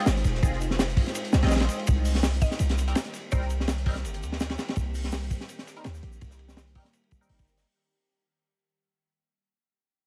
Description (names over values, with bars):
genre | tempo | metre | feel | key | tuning
drum and bass, jungle | 166 BPM | 4/4 | straight | unclear | A4 = 440 Hz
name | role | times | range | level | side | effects
band-passed chord stab | stabs | 0.0-7.6 s | G3 to Eb5 | -38 LUFS | equal | phaser, analog chorus, dub echo
warm 808-style bass | bass | 0.1-7.6 s | Eb1 to Eb2 | -29 LUFS | equal | none
crunchy breakbeat drum kit | drums | 0.1-7.7 s | hi-hat, kick drum, ride cymbal, snare drum | -30 LUFS | equal | none
crunchy breakbeat drum kit | drums | 0.1-7.7 s | hi-hat, shaker, snare drum | -44 LUFS | equal | high-pass filter on hats, high-pass filter on snare, high-pass filter on perc, high-pass filter on room
mallet-like synth pluck | melody | 2.4-3.5 s | C5 to Eb5 | -43 LUFS | equal | chorus, dub echo
room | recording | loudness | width
small room ambience | vinyl crackle | -27 LUFS | mono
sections
0.0-7.7 A section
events
drop 0.0-7.7; fade-out 1.9-7.7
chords
0.0 Fm7; 1.9 Cm7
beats
0.07 | 0.43 0.79 1.15 1.51 | 1.87 2.23 2.60 2.96 | 3.32 3.68 4.04 4.40 | 4.76 5.13 5.49 5.85 | 6.21 6.57 6.93 7.29